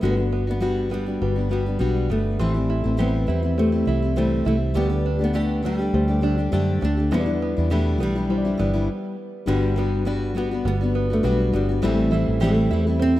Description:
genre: acoustic pop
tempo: 102 BPM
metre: 4/4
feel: swing 55% on 16ths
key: G major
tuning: A4 = 439 Hz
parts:
  - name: nylon-string guitar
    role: melody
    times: 0.0-13.2 s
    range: G3 to D4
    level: -26 LUFS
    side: equal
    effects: none
  - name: fingerpicked steel-string acoustic guitar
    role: accompaniment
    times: 0.0-13.2 s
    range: E2 to G4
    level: -25 LUFS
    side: left 2 dB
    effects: none
  - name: mellow reed electric piano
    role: accompaniment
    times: 0.0-13.2 s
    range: G3 to C6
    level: -28 LUFS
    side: left 3 dB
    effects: fast tremolo
  - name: open-back banjo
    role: arpeggios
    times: 0.0-13.2 s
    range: D3 to G4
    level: -32 LUFS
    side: right 7 dB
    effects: none
  - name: vintage muted fingered electric bass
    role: bass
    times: 0.0-13.2 s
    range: G1 to F#2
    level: -24 LUFS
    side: right 1 dB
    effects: none
room: light reverb, small room ambience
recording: rough home demo mix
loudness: -19 LUFS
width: side -15 dB against mid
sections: 0.0-9.5 A section; 9.5-13.2 B section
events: stop 8.9-9.5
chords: 0.0 Gmaj7; 2.4 Am7; 4.8 Dsus4; 7.1 Em7; 9.5 Gmaj7; 11.8 Am7

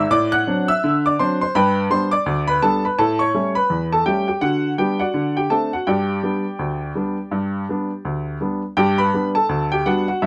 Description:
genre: ragtime piano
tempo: 83 BPM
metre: 2/4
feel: swing 59% on 16ths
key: G major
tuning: A4 = 440 Hz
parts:
  - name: clear upright piano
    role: solo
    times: 0.0-10.3 s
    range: D2 to F#6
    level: -20 LUFS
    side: equal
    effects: none
room: light reverb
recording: close, detailed microphones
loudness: -20 LUFS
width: mono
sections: 0.0-8.8 A section; 8.8-10.3 A section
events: none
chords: 0.1 D7/A; 1.5 G; 3.0 A7; 4.4 G/D; 5.2 D7; 5.9 G

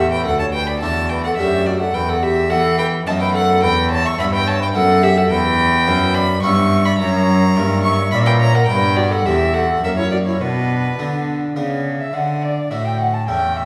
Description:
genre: classical, baroque-style sonata movement with continuo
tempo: 106 BPM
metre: 3/4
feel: straight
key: B minor from 5.3 s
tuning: A4 = 441 Hz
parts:
  - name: rich violin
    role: melody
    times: 0.0-13.7 s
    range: B4 to C#6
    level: -23 LUFS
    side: equal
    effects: none
  - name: mellow baroque flute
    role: second line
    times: 0.0-13.6 s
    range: D4 to A5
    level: -23 LUFS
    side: equal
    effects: none
  - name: harpsichord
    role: accompaniment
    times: 0.0-13.7 s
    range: D2 to F#4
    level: -28 LUFS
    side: equal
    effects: none
  - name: rich cello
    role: bass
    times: 0.0-13.7 s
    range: D2 to E3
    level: -21 LUFS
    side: equal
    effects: none
room: wet concert hall reverb, RT60 2.3 s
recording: recorded in a church or concert hall, small room ambience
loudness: -17 LUFS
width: mono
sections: 0.0-12.1 A section; 12.1-13.7 A section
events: none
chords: 0.3 D; 2.0 E5; 3.1 B7/F#; 3.6 Em; 5.3 C#m7b5/E; 7.0 F#7; 8.7 G; 9.3 C/E; 9.8 F#; 10.4 Bm; 12.1 D

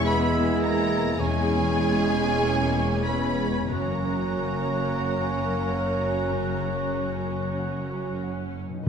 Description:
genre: classical, slow romantic movement for symphony orchestra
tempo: 45-54 BPM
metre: 4/4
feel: rubato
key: unclear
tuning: A4 = 438 Hz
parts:
  - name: warm symphonic violin section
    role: melody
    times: 0.0-8.2 s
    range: G#5 to B5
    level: -33 LUFS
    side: left 2 dB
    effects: none
  - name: clear clarinet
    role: second line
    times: 0.0-8.9 s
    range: E4 to F#4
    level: -35 LUFS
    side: right 1 dB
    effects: none
  - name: mellow cor anglais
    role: second line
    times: 0.0-8.5 s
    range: C#5 to E5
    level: -36 LUFS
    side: right 3 dB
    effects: none
  - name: mellow hollow flute section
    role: second line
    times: 0.0-8.9 s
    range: F#6 to G#6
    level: -37 LUFS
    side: right 1 dB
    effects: none
  - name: warm symphonic violin section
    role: second line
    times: 0.0-8.9 s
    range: G#4 to B4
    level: -36 LUFS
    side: left 3 dB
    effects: none
  - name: rich symphonic viola section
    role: accompaniment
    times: 0.0-8.9 s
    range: F#3 to C#4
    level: -32 LUFS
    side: right 2 dB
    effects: none
  - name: warm bassoon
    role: accompaniment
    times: 0.0-8.9 s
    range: G#3 to C#4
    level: -33 LUFS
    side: right 2 dB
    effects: none
  - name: clear trombone section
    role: sustained chords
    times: 0.0-8.5 s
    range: E3 to C#4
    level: -32 LUFS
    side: right 3 dB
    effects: none
  - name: mellow French horn section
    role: sustained chords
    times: 0.0-8.9 s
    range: G#3 to B3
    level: -33 LUFS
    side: left 3 dB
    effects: none
  - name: concert harp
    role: arpeggios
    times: 0.0-8.9 s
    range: E2 to E6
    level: -33 LUFS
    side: left 7 dB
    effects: none
  - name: warm symphonic cello section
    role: bass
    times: 0.0-8.9 s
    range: E2 to F#2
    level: -32 LUFS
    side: right 2 dB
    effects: none
  - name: warm symphonic double bass section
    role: bass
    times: 0.0-8.9 s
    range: E1 to F#1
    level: -33 LUFS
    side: right 2 dB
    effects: none
room: wet scoring stage reverb, RT60 1.6 s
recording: minimal, uncompressed stereo recording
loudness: -23 LUFS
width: side -7 dB against mid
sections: 0.0-8.9 A section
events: none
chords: 0.0 E; 1.2 C#m/E; 3.7 F#

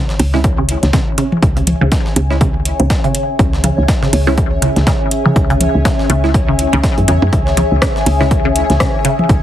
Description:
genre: minimal techno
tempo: 122 BPM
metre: 4/4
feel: swing 58% on 16ths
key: C# minor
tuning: A4 = 438 Hz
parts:
  - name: pulsing gated texture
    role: texture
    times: 0.1-9.4 s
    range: C#5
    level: -25 LUFS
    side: equal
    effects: chorus, built-in reverb, sidechain pumping
  - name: warbly tape-like pad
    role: texture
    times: 0.8-9.4 s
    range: C#4 to G#5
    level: -21 LUFS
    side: left 2 dB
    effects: chorus, built-in reverb, phaser, sidechain pumping
  - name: breakbeat sampler-style drum kit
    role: drums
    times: 0.1-9.4 s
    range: hi-hat, snare drum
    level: -26 LUFS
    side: equal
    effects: sidechain pumping on hats, high-pass filter on hats, high-pass filter on snare
  - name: woody FM bass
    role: bass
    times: 0.2-9.4 s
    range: C#2 to F#2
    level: -15 LUFS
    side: equal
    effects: sidechain pumping
  - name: house drum kit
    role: drums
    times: 0.2-9.2 s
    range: hi-hat, rim click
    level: -19 LUFS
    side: equal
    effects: overdrive
  - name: electronic percussion blips and toms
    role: percussion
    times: 0.2-9.3 s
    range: none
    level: -18 LUFS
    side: right 1 dB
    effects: tape echo
  - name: resonant blip pluck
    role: riff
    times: 0.3-9.1 s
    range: C#3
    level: -19 LUFS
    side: equal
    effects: chorus, phaser, sidechain pumping, ping-pong delay
  - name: wavetable chord stab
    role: stabs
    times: 0.3-8.3 s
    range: G#3 to E4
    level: -22 LUFS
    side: right 4 dB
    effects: cassette tape, tape echo
  - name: electronic kick drum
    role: drums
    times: 0.4-9.4 s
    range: none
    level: -15 LUFS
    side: equal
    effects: overdrive
room: light reverb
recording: heavily compressed radio sound, multiband compression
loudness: -11 LUFS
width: side -12 dB against mid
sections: 0.0-9.4 A section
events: none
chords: 0.0 C#m

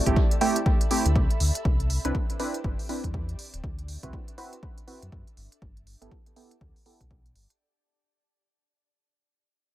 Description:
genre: deep house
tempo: 121 BPM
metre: 4/4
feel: swing 60% on 16ths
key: unclear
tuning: A4 = 440 Hz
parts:
  - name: warm analog keys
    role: stabs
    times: 0.0-7.0 s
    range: A3 to B4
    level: -28 LUFS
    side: right 2 dB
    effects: chorus, vintage 12-bit sampler grit, sidechain pumping, low-pass filter, tape echo
  - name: ethereal airy pad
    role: texture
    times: 0.0-7.6 s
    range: C4 to B5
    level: -39 LUFS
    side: left 2 dB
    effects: ensemble chorus, built-in reverb, sidechain pumping
  - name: sub bass with octave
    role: bass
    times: 0.1-7.5 s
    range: D1 to F#2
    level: -27 LUFS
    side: equal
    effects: tube saturation, sidechain pumping
  - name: electronic hi-hat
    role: drums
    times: 0.1-7.6 s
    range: none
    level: -34 LUFS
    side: right 2 dB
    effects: none
  - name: electronic kick drum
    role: drums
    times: 0.1-7.2 s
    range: none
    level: -26 LUFS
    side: equal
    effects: none
room: digital ambience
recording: echo-heavy mix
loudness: -23 LUFS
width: side -14 dB against mid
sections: 0.0-7.6 A section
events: fade-out on ambient pad 0.0-7.6; fade-out 0.0-7.6; filter sweep on synth keys 0.0-7.6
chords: 0.0 Am7; 1.7 Cmaj9; 3.4 D13; 5.4 G69

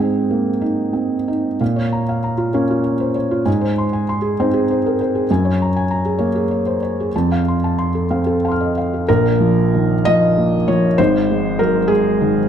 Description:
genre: neoclassical minimalist piano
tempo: 60-68 BPM (dotted quarters)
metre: 6/8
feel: rubato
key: Bb minor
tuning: A4 = 438 Hz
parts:
  - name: felt-muted upright piano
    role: solo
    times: 0.0-12.5 s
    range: Ab1 to F6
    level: -15 LUFS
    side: equal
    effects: none
room: moderate recital hall reverb, RT60 1.4 s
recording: dark, warm production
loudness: -15 LUFS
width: side -8 dB against mid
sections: 0.0-1.6 A section; 1.6-9.1 B section; 9.1-12.5 C section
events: none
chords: 0.0 Ab; 1.6 Bbm; 3.5 Ab; 5.3 Gbadd9; 7.1 F; 9.1 Bb5; 11.0 Ab

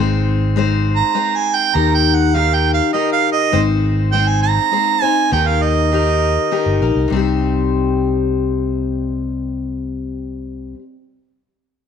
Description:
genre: folk rock and heartland rock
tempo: 101 BPM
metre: 3/4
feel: straight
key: C minor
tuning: A4 = 439 Hz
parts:
  - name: picked steel-string acoustic guitar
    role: accompaniment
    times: 0.0-10.8 s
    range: C3 to C5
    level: -19 LUFS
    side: left 8 dB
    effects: none
  - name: fingered electric bass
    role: bass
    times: 0.0-10.7 s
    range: G1 to Eb2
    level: -19 LUFS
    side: right 1 dB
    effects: none
  - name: warm harmonica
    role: melody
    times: 1.0-7.1 s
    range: Eb5 to Bb5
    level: -17 LUFS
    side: right 10 dB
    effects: none
room: moderate echo chamber reverb, RT60 1.4 s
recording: 1960s-style stereo with parts hard left and right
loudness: -14 LUFS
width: side -7 dB against mid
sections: 0.0-7.1 A section; 7.1-10.7 B section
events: harmonica solo 0.0-7.1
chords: 0.0 Ab; 1.7 Eb; 3.5 Ab; 5.3 Eb; 7.1 Cm

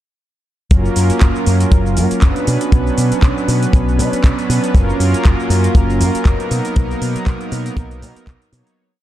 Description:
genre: nu-disco, nu disco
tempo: 119 BPM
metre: 4/4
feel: swing 55% on 16ths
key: unclear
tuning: A4 = 441 Hz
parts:
  - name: warm analog pad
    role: accompaniment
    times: 0.7-8.8 s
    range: F#3 to C#5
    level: -18 LUFS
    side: right 1 dB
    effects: chorus, ping-pong delay
  - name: fingered electric bass with an envelope filter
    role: bass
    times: 0.7-8.6 s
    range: F#1 to B2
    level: -17 LUFS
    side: equal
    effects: none
  - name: house drum kit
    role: drums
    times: 0.7-8.8 s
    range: cabasa, handclaps, hi-hat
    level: -26 LUFS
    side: right 1 dB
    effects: none
  - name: kick drum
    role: drums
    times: 0.7-8.4 s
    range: none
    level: -12 LUFS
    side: equal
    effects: none
room: small room ambience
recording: dark, warm production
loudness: -12 LUFS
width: side -13 dB against mid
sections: 0.7-8.8 drop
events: drop 0.7-8.8; fade-out 6.1-8.8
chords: 0.7 F#maj7; 2.5 Bmadd9; 4.7 F#maj7; 6.5 Bmaj7

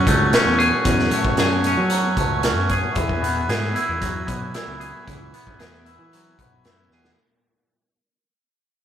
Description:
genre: psychedelic rock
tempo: 114 BPM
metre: 4/4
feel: straight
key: unclear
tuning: A4 = 441 Hz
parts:
  - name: combo organ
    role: sustained chords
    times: 0.0-7.1 s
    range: F#4 to G#5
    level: -27 LUFS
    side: right 3 dB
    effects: spring reverb
  - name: twangy electric guitar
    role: riff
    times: 0.0-7.2 s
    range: F#2 to G#4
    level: -22 LUFS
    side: left 1 dB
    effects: phaser
  - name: overdriven picked electric bass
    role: bass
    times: 0.0-7.1 s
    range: B1 to F#3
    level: -24 LUFS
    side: equal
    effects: none
  - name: raw garage drum kit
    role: drums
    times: 0.1-7.2 s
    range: hi-hat, kick drum, snare drum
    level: -23 LUFS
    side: equal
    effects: none
room: light reverb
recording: rough rehearsal-room recording, tube saturation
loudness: -17 LUFS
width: side -9 dB against mid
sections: 0.0-7.2 A section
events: fade-out 0.0-7.2; drum fill 6.9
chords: 0.0 F#madd9; 3.0 Eadd9

